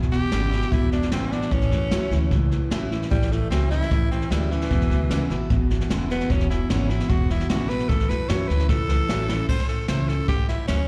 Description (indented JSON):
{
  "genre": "rockabilly",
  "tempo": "150 BPM",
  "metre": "4/4",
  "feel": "straight",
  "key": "A major",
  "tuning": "A4 = 442 Hz",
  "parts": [
    { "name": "picked steel-string acoustic guitar", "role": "accompaniment", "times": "0.0-10.9 s", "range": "E2 to E4", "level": "-35 LUFS", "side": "equal", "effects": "none" },
    { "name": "clean electric guitar", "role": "riff", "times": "0.0-9.5 s", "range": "E2 to F#3", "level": "-30 LUFS", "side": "equal", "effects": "subtle chorus" },
    { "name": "upright bass", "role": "bass", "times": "0.0-10.9 s", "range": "E1 to F#2", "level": "-27 LUFS", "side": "equal", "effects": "none" },
    { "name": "jazz brush drum kit", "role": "drums", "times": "0.0-10.8 s", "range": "crash cymbal, hi-hat, kick drum, snare drum", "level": "-28 LUFS", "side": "equal", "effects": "none" },
    { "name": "raspy tenor saxophone", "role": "melody", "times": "0.1-10.9 s", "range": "E3 to C#5", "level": "-32 LUFS", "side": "equal", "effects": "plate reverb, slapback echo" }
  ],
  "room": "light reverb",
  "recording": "live gig heard through the venue's PA, recital hall reverb",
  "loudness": "-23 LUFS",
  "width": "mono",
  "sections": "0.0-9.5 A section; 9.5-10.9 A section",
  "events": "tenor saxophone solo 0.0-10.9; drum fill 8.7-9.5",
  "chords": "0.0 E7; 1.5 A; 4.7 E7; 7.9 A"
}